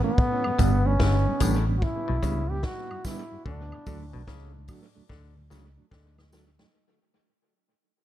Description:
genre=roots reggae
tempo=73 BPM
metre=4/4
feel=swing 64% on 16ths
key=unclear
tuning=A4 = 440 Hz
part: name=clear trombone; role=melody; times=0.0-4.2 s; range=B3 to G4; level=-30 LUFS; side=equal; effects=tape echo
part: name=mellow electric guitar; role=accompaniment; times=0.0-6.7 s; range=E3 to D4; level=-33 LUFS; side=right 9 dB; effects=tape echo
part: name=tonewheel organ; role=accompaniment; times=0.0-6.7 s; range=D2 to B3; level=-38 LUFS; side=left 2 dB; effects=slow rotary speaker, analog delay
part: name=vintage drum kit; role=drums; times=0.2-6.7 s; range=hi-hat, kick drum, snare drum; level=-28 LUFS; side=equal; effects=analog delay
part: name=woodblock and tambourine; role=percussion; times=0.4-6.6 s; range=none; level=-40 LUFS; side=right 2 dB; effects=none
part: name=bright clav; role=riff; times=0.6-6.2 s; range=G2 to D3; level=-36 LUFS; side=left 9 dB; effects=none
part: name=vintage muted fingered electric bass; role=bass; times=0.6-6.6 s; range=G1 to D2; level=-26 LUFS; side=equal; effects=none
room=little or no reverb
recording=echo-heavy mix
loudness=-22 LUFS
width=side -12 dB against mid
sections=0.0-6.7 A section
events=fade-out 0.0-6.7; drum fill 5.1-6.7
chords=0.2 G; 3.5 D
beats=| 0.18 1.00 1.82 2.64 | 3.46 4.28 5.10 5.92

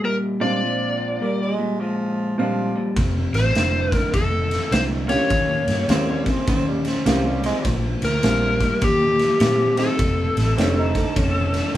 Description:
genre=electric blues shuffle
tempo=102 BPM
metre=4/4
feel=swing 64% on 8ths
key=unclear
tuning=A4 = 441 Hz
part: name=overdriven slide guitar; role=melody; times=0.0-11.7 s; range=G4 to D5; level=-22 LUFS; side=left 1 dB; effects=none
part: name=electric guitar through a small old amp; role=riff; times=0.0-11.8 s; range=F2 to Db4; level=-25 LUFS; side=left 2 dB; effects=none
part: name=bright upright piano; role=accompaniment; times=0.4-11.8 s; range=Bb2 to Ab4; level=-26 LUFS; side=right 2 dB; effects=none
part: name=growling tenor saxophone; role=second line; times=1.2-11.8 s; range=F3 to Eb4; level=-27 LUFS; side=right 4 dB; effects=none
part: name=vintage muted fingered electric bass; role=bass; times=3.0-11.8 s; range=F1 to Bb2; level=-24 LUFS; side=equal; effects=none
part: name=raw garage drum kit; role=drums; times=3.0-11.8 s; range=kick drum, ride cymbal, snare drum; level=-23 LUFS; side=equal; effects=none
room=light reverb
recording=band playing live in one room, small room ambience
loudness=-18 LUFS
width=side -13 dB against mid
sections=0.0-11.8 A section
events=none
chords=0.0 Bb9; 3.0 F7; 5.3 Eb9; 7.6 Bb9; 8.8 Eb; 10.0 F9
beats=0.04 | 0.62 1.21 1.79 2.38 | 2.96 3.55 4.13 4.72 | 5.31 5.89 6.48 7.06 | 7.65 8.23 8.82 9.40 | 9.99 10.57 11.16 11.74

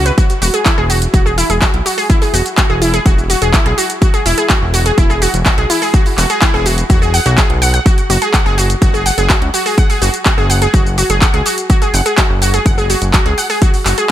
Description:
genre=progressive house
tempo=125 BPM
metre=4/4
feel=straight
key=unclear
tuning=A4 = 445 Hz
part: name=fat analog bass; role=bass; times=0.0-13.9 s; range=E1 to C#2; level=-16 LUFS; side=equal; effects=sidechain pumping
part: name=wide unison pluck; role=arpeggios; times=0.1-14.1 s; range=E4 to F#5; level=-16 LUFS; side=equal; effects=sidechain pumping, digital delay
part: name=house drum kit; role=drums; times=0.1-14.1 s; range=handclaps, hi-hat, shaker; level=-17 LUFS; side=equal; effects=overdrive, sidechain pumping on hats, sidechain pumping on perc
part: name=electronic kick drum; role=drums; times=0.2-13.7 s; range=none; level=-12 LUFS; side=equal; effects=overdrive
room=digital ambience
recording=none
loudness=-10 LUFS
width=side -12 dB against mid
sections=0.0-14.1 A section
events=none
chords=0.2 Eadd9; 7.9 F#sus2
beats=| 0.18 0.66 1.14 1.62 | 2.10 2.58 3.06 3.54 | 4.02 4.50 4.98 5.46 | 5.94 6.42 6.90 7.38 | 7.86 8.34 8.82 9.30 | 9.78 10.26 10.74 11.22 | 11.70 12.18 12.66 13.14 | 13.62

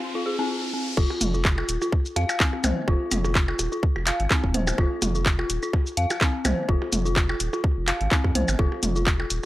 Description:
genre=minimal techno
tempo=126 BPM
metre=4/4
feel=swing 55% on 16ths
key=F minor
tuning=A4 = 440 Hz
part: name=riser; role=sound effects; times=0.0-1.0 s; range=none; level=-33 LUFS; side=equal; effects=none
part: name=dark detuned synth bell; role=riff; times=0.2-9.2 s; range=C4 to F5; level=-28 LUFS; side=left 1 dB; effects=chorus, sidechain pumping, analog delay
part: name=saturated sub bass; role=bass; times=1.0-9.4 s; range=Eb1 to F2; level=-27 LUFS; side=equal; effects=tube saturation, sidechain pumping
part: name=electronic kick drum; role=drums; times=1.0-9.2 s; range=none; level=-22 LUFS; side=equal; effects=none
part: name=punchy analog drum machine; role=drums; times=1.0-9.4 s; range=crash cymbal, handclaps, hi-hat, shaker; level=-26 LUFS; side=equal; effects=none
part: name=electronic percussion blips, toms and claves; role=percussion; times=1.1-9.3 s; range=none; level=-30 LUFS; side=right 1 dB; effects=analog delay
room=little or no reverb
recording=dry, gritty hardware recording, transformer saturation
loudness=-21 LUFS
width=side -16 dB against mid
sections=1.0-9.5 A section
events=riser 0.0-1.0; break 0.0-1.0; drop 1.0-9.5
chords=0.0 F5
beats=0.02 0.50 | 0.97 1.45 1.93 2.40 | 2.88 3.35 3.83 4.31 | 4.78 5.26 5.73 6.21 | 6.69 7.16 7.64 8.12 | 8.59 9.07

